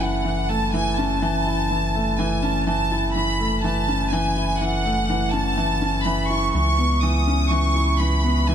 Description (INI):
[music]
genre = piano and strings electronica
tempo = 124 BPM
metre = 4/4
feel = straight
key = F# dorian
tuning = A4 = 441 Hz
[part]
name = clear studio violin section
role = melody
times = 0.0-8.5 s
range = F#5 to D#6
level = -24 LUFS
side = right 1 dB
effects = tape echo
[part]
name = felt-muted upright piano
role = riff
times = 0.0-8.5 s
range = E3 to E4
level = -24 LUFS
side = left 1 dB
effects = none
[part]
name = round analog bass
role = bass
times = 0.0-8.5 s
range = F#1 to C#2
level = -24 LUFS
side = right 1 dB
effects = tube saturation
[sound]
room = light reverb, small room ambience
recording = none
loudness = -19 LUFS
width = side -9 dB against mid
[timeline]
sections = 0.0-8.5 A section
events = none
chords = 0.0 F#m7; 6.5 C#m7